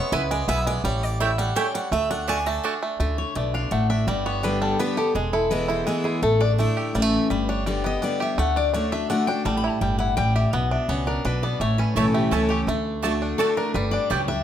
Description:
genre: bluegrass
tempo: 167 BPM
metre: 3/4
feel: straight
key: D major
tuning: A4 = 440 Hz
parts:
  - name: bluegrass banjo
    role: melody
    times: 0.0-14.4 s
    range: G3 to G4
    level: -28 LUFS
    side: right 4 dB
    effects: none
  - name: picked steel-string acoustic guitar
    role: accompaniment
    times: 0.0-14.4 s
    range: E2 to A5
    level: -26 LUFS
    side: left 1 dB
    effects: none
  - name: mandolin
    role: stabs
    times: 0.1-2.7, 12.0-14.2 s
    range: A3 to A5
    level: -28 LUFS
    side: right 5 dB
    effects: none
  - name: upright bass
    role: bass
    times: 0.1-14.4 s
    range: E1 to D2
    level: -26 LUFS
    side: equal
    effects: none
  - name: picked steel-string acoustic guitar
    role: melody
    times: 3.2-14.4 s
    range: G4 to B5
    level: -26 LUFS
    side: left 4 dB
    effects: none
room: moderate large studio reverb, RT60 1.1 s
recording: none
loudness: -21 LUFS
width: side -10 dB against mid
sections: 0.0-3.0 A section; 3.0-14.4 B section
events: steel-string acoustic guitar solo 0.0-3.0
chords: 0.0 E; 0.8 A7; 1.9 D; 3.0 D5; 4.1 G; 5.2 E; 6.2 Asus4; 6.9 A; 7.3 G; 8.4 D; 9.5 A5; 10.5 Bm; 11.6 A; 12.7 D; 13.8 G

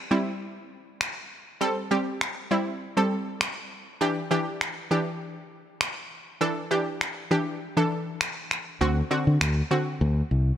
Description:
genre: dance-pop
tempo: 100 BPM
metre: 4/4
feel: straight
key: unclear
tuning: A4 = 443 Hz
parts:
  - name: wide unison pluck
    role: accompaniment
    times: 0.1-10.5 s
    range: D3 to A4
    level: -26 LUFS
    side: equal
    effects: none
  - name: electronic finger snaps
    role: drums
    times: 1.0-9.6 s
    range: none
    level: -30 LUFS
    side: equal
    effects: none
  - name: fingered electric bass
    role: bass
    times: 8.8-10.5 s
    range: C2 to D3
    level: -22 LUFS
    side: equal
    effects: none
room: light reverb, digital ambience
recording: none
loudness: -24 LUFS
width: side -10 dB against mid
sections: 0.0-10.6 A section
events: none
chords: 0.0 Am7; 4.0 Em7; 8.8 D7

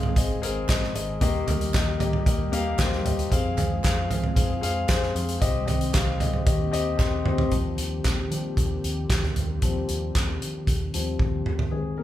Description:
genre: piano-driven pop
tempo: 114 BPM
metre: 4/4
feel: straight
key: unclear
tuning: A4 = 438 Hz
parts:
  - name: warm grand piano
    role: accompaniment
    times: 0.0-12.0 s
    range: Ab2 to F5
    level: -28 LUFS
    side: left 4 dB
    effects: none
  - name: warm analog pad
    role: sustained chords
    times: 0.0-11.7 s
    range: Eb3 to Ab4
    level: -34 LUFS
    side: right 1 dB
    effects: chorus
  - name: vintage muted fingered electric bass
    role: bass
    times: 0.0-11.7 s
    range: Ab1 to F3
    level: -30 LUFS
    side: equal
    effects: none
  - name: loose indie drum kit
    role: drums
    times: 0.0-11.7 s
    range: handclaps, hi-hat, kick drum, snare drum, toms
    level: -25 LUFS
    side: right 1 dB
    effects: none
  - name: group handclap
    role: percussion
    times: 0.7-7.1 s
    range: none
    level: -41 LUFS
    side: right 5 dB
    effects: none
room: moderate large studio reverb, RT60 0.8 s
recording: band playing live in one room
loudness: -22 LUFS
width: side -13 dB against mid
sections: 0.0-7.5 A section; 7.5-11.7 B section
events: drum fill 7.0-7.5, 11.2-11.7; grand piano solo 7.5-11.7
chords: 0.0 Ab; 1.2 Eb; 3.3 Fm; 5.4 Cm; 6.5 Eb6

